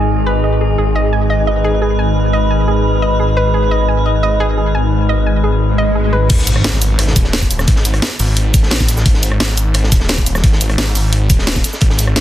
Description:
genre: dark technical drum and bass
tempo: 174 BPM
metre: 4/4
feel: straight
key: G# minor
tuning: A4 = 440 Hz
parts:
  - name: metallic inharmonic drone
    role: sustained chords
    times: 0.0-6.3 s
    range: D#3 to B4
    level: -20 LUFS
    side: left 1 dB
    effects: chorus, built-in reverb, sidechain pumping
  - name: snarling distorted saw bass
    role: bass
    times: 0.0-12.2 s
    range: D#1 to A1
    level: -15 LUFS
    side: equal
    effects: distortion, tube saturation, sidechain pumping
  - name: warbly tape-like pad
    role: texture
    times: 0.0-6.3 s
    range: D#4 to B5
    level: -22 LUFS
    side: equal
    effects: chorus, built-in reverb, sidechain pumping
  - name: soft round pluck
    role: arpeggios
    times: 0.3-6.2 s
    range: G#4 to G#5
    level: -19 LUFS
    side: right 1 dB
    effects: chorus, sidechain pumping, digital delay
  - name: swell and impact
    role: sound effects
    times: 5.7-7.7 s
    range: none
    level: -22 LUFS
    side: left 1 dB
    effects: none
  - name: crunchy breakbeat drum kit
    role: drums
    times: 6.3-12.2 s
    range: hi-hat, snare drum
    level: -24 LUFS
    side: equal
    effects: high-pass filter on hats, high-pass filter on snare, high-pass filter on room
  - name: drum and bass drum kit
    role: drums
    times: 6.3-12.2 s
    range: crash cymbal, hi-hat, rim click, shaker, snare drum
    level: -18 LUFS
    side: equal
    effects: none
  - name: electronic kick drum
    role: drums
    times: 6.3-11.9 s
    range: none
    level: -13 LUFS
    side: equal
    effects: none
room: light reverb, digital ambience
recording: dense, heavily limited modern master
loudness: -11 LUFS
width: side -12 dB against mid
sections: 0.0-6.3 A section; 6.3-12.2 B section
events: swell 5.7-6.3; drop 6.3-12.2; impact 6.3-7.7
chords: 0.0 G#5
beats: 0.09 0.44 | 0.78 1.13 1.47 1.82 | 2.16 2.51 2.85 3.19 | 3.54 3.88 4.23 4.58 | 4.92 5.26 5.61 5.95 | 6.30 6.64 6.99 7.33 | 7.68 8.02 8.37 8.71 | 9.06 9.40 9.75 10.09 | 10.44 10.78 11.13 11.47 | 11.82 12.16

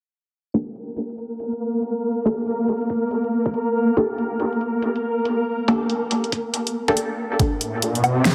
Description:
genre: deep dubstep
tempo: 140 BPM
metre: 4/4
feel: swing 61% on 16ths, half-time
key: G minor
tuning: A4 = 439 Hz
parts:
  - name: filtered dub chord stab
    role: stabs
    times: 0.5-7.5 s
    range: Bb3 to A4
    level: -26 LUFS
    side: equal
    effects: phaser, lush chorus, dub echo
  - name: dubstep drum kit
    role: drums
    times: 0.5-8.3 s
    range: hi-hat, snare drum, woodblock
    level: -24 LUFS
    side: equal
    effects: overdrive
  - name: electronic kick drum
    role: drums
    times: 0.5-7.5 s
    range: none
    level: -27 LUFS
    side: equal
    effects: overdrive, high-pass filter on kick
  - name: flickering grainy texture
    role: texture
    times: 0.9-7.4 s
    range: Bb3 to Bb4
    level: -26 LUFS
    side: equal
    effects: built-in reverb
  - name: deep dark ambient pad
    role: sustained chords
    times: 7.4-8.3 s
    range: none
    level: barely audible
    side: none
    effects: none
  - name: riser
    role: sound effects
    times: 7.7-8.3 s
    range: none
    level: -24 LUFS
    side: equal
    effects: none
room: moderate echo chamber reverb, RT60 1.9 s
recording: heavily compressed radio sound, low-pass filter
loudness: -23 LUFS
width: mono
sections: 0.5-7.4 A section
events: filter sweep on synth stab 0.5-7.4; filter sweep 0.5-7.4; riser 7.7-8.3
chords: 0.5 N.C.; 7.4 Gmadd9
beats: | 0.54 0.97 1.40 1.82 | 2.25 2.68 3.11 3.54 | 3.97 4.40 4.83 5.25 | 5.68 6.11 6.54 6.97 | 7.40 7.83 8.25

